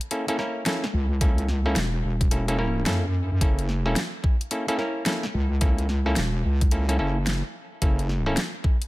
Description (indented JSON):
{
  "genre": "glitch hop",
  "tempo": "109 BPM",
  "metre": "4/4",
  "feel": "swing 63% on 16ths",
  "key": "unclear",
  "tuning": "A4 = 435 Hz",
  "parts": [
    { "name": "dubstep drum kit", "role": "drums", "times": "0.0-8.9 s", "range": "hi-hat, snare drum", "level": "-29 LUFS", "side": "equal", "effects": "overdrive" },
    { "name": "clav", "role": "stabs", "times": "0.1-8.4 s", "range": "A#3 to A#4", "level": "-28 LUFS", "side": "equal", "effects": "vintage 12-bit sampler grit, sidechain pumping, tape echo" },
    { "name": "wobble bass", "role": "bass", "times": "0.9-8.4 s", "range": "E1 to F#2", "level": "-24 LUFS", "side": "equal", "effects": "chorus, overdrive" },
    { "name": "electronic kick drum", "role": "drums", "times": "1.2-8.8 s", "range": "none", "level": "-22 LUFS", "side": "equal", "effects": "overdrive" }
  ],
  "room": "little or no reverb",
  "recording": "none",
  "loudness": "-22 LUFS",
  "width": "side -19 dB against mid",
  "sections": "0.0-8.9 A section",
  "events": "none",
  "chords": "0.0 F#7#9"
}